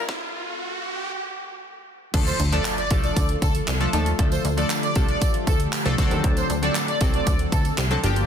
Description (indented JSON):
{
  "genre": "dance-pop",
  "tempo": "117 BPM",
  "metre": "4/4",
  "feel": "straight",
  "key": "D minor",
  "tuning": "A4 = 440 Hz",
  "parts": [
    { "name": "chorused retro synth keys", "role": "accompaniment", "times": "0.0-8.3 s", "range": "F3 to A4", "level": "-27 LUFS", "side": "left 1 dB", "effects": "sidechain pumping" },
    { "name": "ethereal airy pad", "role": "sustained chords", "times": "0.0-8.3 s", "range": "D3 to Bb4", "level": "-32 LUFS", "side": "left 1 dB", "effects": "ensemble chorus, built-in reverb, sidechain pumping" },
    { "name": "plucky analog bass", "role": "bass", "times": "0.0-8.2 s", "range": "G1 to Eb2", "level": "-24 LUFS", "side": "equal", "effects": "sidechain pumping" },
    { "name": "riser and impact", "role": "sound effects", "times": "0.0-4.2 s", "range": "none", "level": "-32 LUFS", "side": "right 1 dB", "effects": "none" },
    { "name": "house drum kit", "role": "drums", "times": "0.1-8.3 s", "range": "crash cymbal, handclaps, hi-hat, kick drum, snare drum", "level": "-24 LUFS", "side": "equal", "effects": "none" },
    { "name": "soft supersaw", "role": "melody", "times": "2.3-7.6 s", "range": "A4 to D5", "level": "-28 LUFS", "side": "right 1 dB", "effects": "phaser, sidechain pumping, digital delay" },
    { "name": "tambourine", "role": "percussion", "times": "2.3-8.3 s", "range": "none", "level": "-39 LUFS", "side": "right 10 dB", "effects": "none" }
  ],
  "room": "digital ambience",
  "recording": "dense, heavily limited modern master, high-pass filter",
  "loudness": "-20 LUFS",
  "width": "side -8 dB against mid",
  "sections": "0.0-2.1 A section; 2.1-8.3 B section",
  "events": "build-up 0.0-2.1; riser 0.0-2.1; stop 0.1-2.1; drop 2.1-8.3; impact 2.1-4.2",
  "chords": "0.0 Gm7; 2.1 Dm; 6.0 D7",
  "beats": "| 0.09 0.60 1.11 1.62 | 2.14 2.65 3.16 3.68 | 4.19 4.70 5.21 5.73 | 6.24 6.75 7.27 7.78"
}